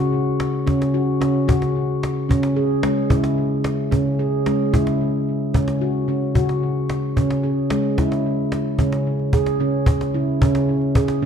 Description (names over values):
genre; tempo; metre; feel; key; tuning
world meditative, meditative tuned percussion; 74 BPM (dotted quarters); 6/8; straight; C# minor; A4 = 440 Hz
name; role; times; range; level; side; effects
handpan; arpeggios; 0.0-11.3 s; C#3 to G#4; -19 LUFS; equal; ping-pong delay
cajon; percussion; 0.4-11.2 s; none; -23 LUFS; equal; none
room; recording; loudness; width
wet concert hall reverb, RT60 1.7 s, studio reverb; dark, warm production; -18 LUFS; side -7 dB against mid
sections
0.0-8.8 A section; 8.8-11.3 B section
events
none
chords
0.0 F#5/C#; 2.3 C#m; 5.5 F#5/C#; 7.2 C#m; 8.8 C#5